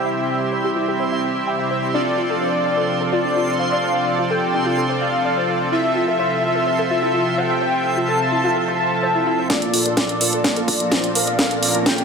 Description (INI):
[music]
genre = progressive house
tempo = 127 BPM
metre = 4/4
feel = straight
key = F major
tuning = A4 = 440 Hz
[part]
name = lush unison pad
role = sustained chords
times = 0.0-12.0 s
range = Bb2 to E5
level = -26 LUFS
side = left 1 dB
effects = chorus, sidechain pumping
[part]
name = soft supersaw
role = stabs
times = 0.0-11.9 s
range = Bb3 to F5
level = -22 LUFS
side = right 2 dB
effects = sidechain pumping, low-pass filter, ping-pong delay
[part]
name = backwards swelling texture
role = texture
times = 0.0-12.0 s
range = C6 to Bb6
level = -32 LUFS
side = right 2 dB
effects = built-in reverb, sidechain pumping
[part]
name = soft round pluck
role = arpeggios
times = 0.1-11.9 s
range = D4 to G5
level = -26 LUFS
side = left 2 dB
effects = ensemble chorus, cassette tape, sidechain pumping, ping-pong delay
[part]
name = wide unison lead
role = melody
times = 1.9-12.0 s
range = D5 to A5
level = -22 LUFS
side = left 2 dB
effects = sidechain pumping, dub echo
[part]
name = electronic kick drum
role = drums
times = 9.5-12.0 s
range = none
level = -26 LUFS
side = equal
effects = overdrive, high-pass filter on kick, high-pass filter on room
[part]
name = house drum kit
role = drums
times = 9.5-12.0 s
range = hi-hat, snare drum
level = -19 LUFS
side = equal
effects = overdrive, low-pass filter on cymbals, low-pass filter on snare, low-pass filter on hats, low-pass filter on room
[part]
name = riser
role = sound effects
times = 11.1-12.0 s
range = none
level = -33 LUFS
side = equal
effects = none
[sound]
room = moderate lush hall reverb, RT60 2.0 s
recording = none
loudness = -17 LUFS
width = side -5 dB against mid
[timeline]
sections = 0.0-9.5 A section; 9.5-12.0 B section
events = filter sweep on synth pluck 0.0-9.5; build-up 9.5-12.0; drum fill 9.5-12.0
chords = 0.0 C; 1.9 Dm7; 5.7 Fmaj7/C; 9.5 Bbmaj7